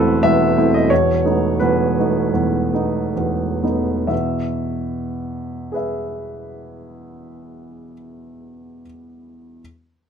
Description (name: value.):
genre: classical, romantic character piece for solo piano.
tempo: 58-94 BPM.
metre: 4/4.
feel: rubato.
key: E major.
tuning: A4 = 440 Hz.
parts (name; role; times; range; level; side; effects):
warm baby grand piano; solo; 0.0-9.6 s; E1 to F#5; -18 LUFS; right 1 dB; none.
room: light reverb.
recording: close, detailed microphones.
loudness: -17 LUFS.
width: side -7 dB against mid.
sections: 0.0-4.1 A section; 4.1-7.4 B section.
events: slowing down 0.0-4.1.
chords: 0.0 Am/E; 0.9 B7/E; 4.1 E.